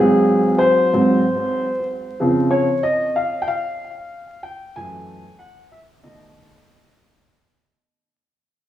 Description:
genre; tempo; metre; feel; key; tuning
hip hop; 94 BPM; 4/4; swing 64% on 16ths; unclear; A4 = 435 Hz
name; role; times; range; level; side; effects
warm upright piano; solo; 0.0-7.0 s; F#2 to G#5; -17 LUFS; equal; tape echo
room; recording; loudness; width
moderate plate reverb, RT60 3.0 s; worn, warbling old tape, cassette tape, vinyl crackle, warbly pitch drift, small room reverb; -16 LUFS; side -12 dB against mid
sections
0.0-7.3 A section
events
fade-out 0.0-7.3; upright piano solo 0.0-7.3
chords
0.0 G#7; 2.2 C#maj7; 4.8 F#m9; 6.0 B7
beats
0.29 0.93 1.56 | 2.20 2.84 3.48 4.12 | 4.76 5.39 6.03 6.67

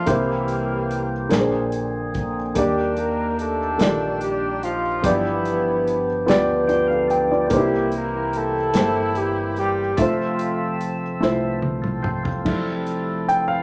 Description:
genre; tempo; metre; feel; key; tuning
slow gospel; 48 BPM (dotted quarters); 6/8; straight; F major; A4 = 439 Hz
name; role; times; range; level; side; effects
warm horn section; melody; 0.0-11.2 s; E3 to Bb4; -27 LUFS; equal; none
dark baby grand piano; accompaniment; 0.0-13.6 s; G2 to G5; -24 LUFS; equal; none
percussive tonewheel organ; sustained chords; 0.0-13.6 s; C3 to G5; -30 LUFS; equal; slow rotary speaker
fingered electric bass; bass; 0.0-13.6 s; F1 to Eb2; -34 LUFS; equal; none
warm soul drum kit; drums; 0.1-13.5 s; crash cymbal, hi-hat, kick drum, snare drum, toms; -28 LUFS; equal; none
mellow French horn section; sustained chords; 12.5-13.6 s; F3 to A4; -35 LUFS; equal; none
room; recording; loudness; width
moderate large studio reverb, RT60 0.8 s; none; -22 LUFS; mono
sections
0.0-12.5 A section; 12.5-13.6 B section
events
tonewheel organ fill 6.3-7.5; drum fill 11.2-12.5; grand piano solo 12.5-13.6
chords
0.1 C7; 1.3 Bb9; 2.6 Ebmaj7; 5.0 G7; 7.5 C7; 10.0 Fmaj7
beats
| 0.08 1.32 | 2.56 3.79 | 5.03 6.27 | 7.51 8.75 | 9.99 11.22 | 12.47

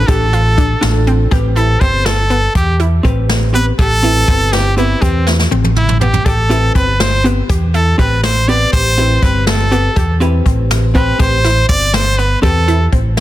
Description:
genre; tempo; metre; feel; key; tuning
progressive instrumental, band music in an uneven meter; 243 BPM (eighths); 5/8; straight; A minor; A4 = 441 Hz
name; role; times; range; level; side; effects
brilliant trumpet; melody; 0.0-12.9 s; C4 to D5; -16 LUFS; equal; none
analog pluck; arpeggios; 0.0-13.2 s; B3 to G4; -22 LUFS; equal; chorus, digital delay
hollow-body short-scale fingered electric bass; bass; 0.0-13.2 s; G1 to E2; -14 LUFS; equal; none
vintage hollow-body jazz guitar; accompaniment; 0.1-12.8 s; C4 to C5; -21 LUFS; left 1 dB; none
jazz brush drum kit; drums; 0.1-13.2 s; hi-hat, kick drum, snare drum, toms; -16 LUFS; equal; soft clipping on snare
room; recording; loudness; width
studio ambience; dense, heavily limited modern master; -10 LUFS; side -14 dB against mid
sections
0.0-1.3 A section; 1.3-13.2 B section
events
trumpet solo 1.3-13.2; drum fill 5.3-6.3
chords
0.0 Dm/A; 1.3 Am7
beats
| 0.08 0.33 0.58 0.82 1.07 | 1.32 1.56 1.81 2.06 2.31 | 2.55 2.80 3.05 3.29 3.54 | 3.79 4.03 4.28 4.53 4.78 | 5.02 5.27 5.52 5.76 6.01 | 6.26 6.50 6.75 7.00 7.25 | 7.49 7.74 7.99 8.23 8.48 | 8.73 8.97 9.22 9.47 9.72 | 9.96 10.21 10.46 10.70 10.95 | 11.20 11.45 11.69 11.94 12.19 | 12.43 12.68 12.93 13.17

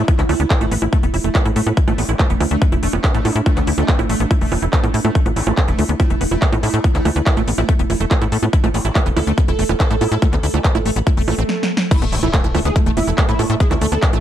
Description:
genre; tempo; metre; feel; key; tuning
psychedelic trance; 142 BPM; 4/4; straight; unclear; A4 = 439 Hz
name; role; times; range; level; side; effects
vowel-sweep wobble bass; second line; 0.0-13.6 s; G#3 to E4; -33 LUFS; left 4 dB; none
pulsing gated texture; sustained chords; 0.0-14.2 s; A3 to A4; -25 LUFS; right 3 dB; chorus, built-in reverb, sidechain pumping
liquid acid bass; riff; 0.0-14.2 s; A3 to E4; -25 LUFS; moving between left 4 dB and right 4 dB; chorus, auto-pan, sidechain pumping, dub echo
tight sequencer bass; bass; 0.0-14.2 s; E1 to A2; -19 LUFS; equal; none
big-room dance drum kit; drums; 0.1-14.2 s; bongos, crash cymbal, handclaps, hi-hat, snare drum; -23 LUFS; right 3 dB; overdrive, small room ambience
electronic kick drum; drums; 0.1-14.1 s; none; -16 LUFS; equal; overdrive, small room ambience
swell and impact; sound effects; 11.2-13.6 s; none; -27 LUFS; right 1 dB; none
wide unison lead; melody; 11.9-14.2 s; A3 to A4; -24 LUFS; equal; phaser, cassette tape, sidechain pumping, dub echo
room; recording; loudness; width
little or no reverb; dark, warm production; -14 LUFS; side -11 dB against mid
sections
0.0-11.9 A section; 11.9-14.2 B section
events
swell 11.2-11.9; drum fill 11.5-11.9; drop 11.9-14.2; impact 11.9-13.6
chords
0.0 A5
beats
| 0.08 0.50 0.93 1.35 | 1.77 2.19 2.62 3.04 | 3.46 3.88 4.31 4.73 | 5.15 5.57 6.00 6.42 | 6.84 7.26 7.69 8.11 | 8.53 8.96 9.38 9.80 | 10.22 10.64 11.07 11.49 | 11.91 12.34 12.76 13.18 | 13.60 14.03

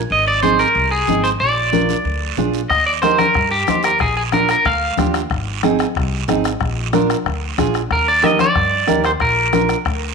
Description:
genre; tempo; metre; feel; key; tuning
latin, cumbia; 185 BPM; 4/4; straight; unclear; A4 = 440 Hz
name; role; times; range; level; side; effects
upright bass; bass; 0.0-10.1 s; Ab1 to G2; -24 LUFS; left 1 dB; none
electric guitar at the edge of break-up; melody; 0.1-5.0, 7.9-10.1 s; G4 to F5; -16 LUFS; right 1 dB; spring reverb, slapback echo
guiro; percussion; 0.1-10.1 s; none; -30 LUFS; right 13 dB; none
nylon-string guitar; accompaniment; 0.4-9.8 s; C4 to C5; -21 LUFS; right 9 dB; none
congas; percussion; 0.4-9.7 s; none; -23 LUFS; left 13 dB; none
bombo; percussion; 2.7-10.0 s; none; -23 LUFS; left 7 dB; none
room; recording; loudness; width
moderate echo chamber reverb, RT60 1.6 s, studio reverb; 1960s-style stereo with parts hard left and right; -14 LUFS; side -5 dB against mid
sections
0.0-10.1 A section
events
none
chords
0.1 Ab; 1.4 Bb7; 2.7 Eb; 4.0 Bb; 5.3 Ab; 6.6 Bb7; 7.9 Eb; 9.2 Bb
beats
| 0.11 0.43 0.76 1.08 | 1.41 1.73 2.06 2.38 | 2.71 3.03 3.36 3.68 | 4.01 4.33 4.66 4.98 | 5.31 5.63 5.96 6.28 | 6.61 6.93 7.26 7.58 | 7.91 8.23 8.56 8.88 | 9.21 9.53 9.86

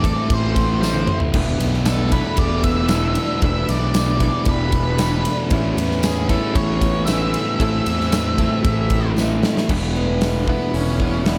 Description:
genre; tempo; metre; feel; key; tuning
rock, shoegaze and dream pop; 115 BPM; 4/4; straight; unclear; A4 = 440 Hz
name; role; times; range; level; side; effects
octave-fuzz lead guitar; melody; 0.0-11.4 s; B3 to E5; -28 LUFS; equal; distortion, tape echo
picked twelve-string acoustic guitar; arpeggios; 0.0-11.4 s; E3 to A4; -33 LUFS; equal; subtle chorus, tape echo
direct-recorded clean electric guitar; riff; 0.0-11.4 s; E2 to A4; -28 LUFS; equal; reverse reverb
thick fuzz guitar; riff; 0.0-11.4 s; E2 to A3; -27 LUFS; equal; distortion, analog chorus
fuzz fingered electric bass; bass; 0.0-11.4 s; E1 to E2; -25 LUFS; equal; overdrive
huge arena drum kit; drums; 0.0-11.4 s; crash cymbal, hi-hat, kick drum, ride cymbal, snare drum, toms; -24 LUFS; equal; none
tambourine; percussion; 0.8-9.3 s; none; -38 LUFS; equal; none
room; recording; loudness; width
light reverb, small room ambience; none; -19 LUFS; mono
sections
0.0-9.7 A section; 9.7-11.4 B section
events
drum fill 0.8-1.3, 9.2-9.7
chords
0.0 Am; 1.3 E7sus4; 5.5 Amaj9; 7.6 Am; 9.7 E7sus4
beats
0.29 0.81 | 1.34 1.86 2.38 2.91 | 3.43 3.95 4.47 5.00 | 5.52 6.04 6.56 7.08 | 7.61 8.13 8.65 9.17 | 9.69 10.21 10.74 11.26

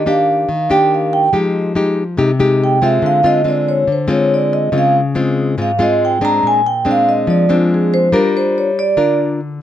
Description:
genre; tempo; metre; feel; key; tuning
bossa nova; 141 BPM; 4/4; straight; unclear; A4 = 440 Hz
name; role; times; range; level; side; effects
vibraphone with soft mallets; melody; 0.0-9.2 s; F4 to Bb5; -14 LUFS; right 2 dB; none
nylon-string guitar; accompaniment; 0.0-9.6 s; Ab2 to Bb4; -15 LUFS; left 2 dB; none
room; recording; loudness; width
light reverb; close, detailed microphones; -12 LUFS; side -11 dB against mid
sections
0.0-9.6 A section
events
vibraphone solo 0.0-9.6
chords
0.0 Ebmaj9; 1.3 Fm9; 3.0 Dm7b5; 4.7 Dbmaj7; 6.4 Bb9; 8.1 Gm7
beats
0.06 0.48 0.91 | 1.33 1.75 2.18 2.60 | 3.03 3.45 3.88 4.30 | 4.73 5.16 5.58 6.00 | 6.43 6.86 7.28 7.70 | 8.13 8.55 8.98 9.40

